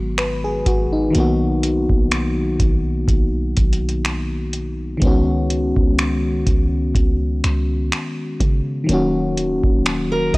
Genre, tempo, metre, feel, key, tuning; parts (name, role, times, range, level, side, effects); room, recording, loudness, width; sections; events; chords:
contemporary R&B; 62 BPM; 4/4; swing 54% on 16ths; A4 = 440 Hz
FM electric piano; accompaniment; 0.0-10.4 s; Eb3 to Cb5; -20 LUFS; left 1 dB; chorus
clean 808-style bass; bass; 0.0-10.4 s; Eb1 to Db3; -22 LUFS; equal
booming analog drum machine; drums; 0.2-10.4 s; finger snaps, hi-hat, kick drum; -19 LUFS; equal; vintage 12-bit sampler grit
fingerpicked steel-string acoustic guitar; arpeggios; 10.1-10.4 s; Bb4 to Eb5; -19 LUFS; right 1 dB
little or no reverb; dry, gritty hardware recording, transformer saturation, cassette tape; -16 LUFS; side -22 dB against mid
0.0-10.4 A section
0.0 Abm7; 1.1 Bmaj7; 5.0 Db9sus4; 8.9 Ebm7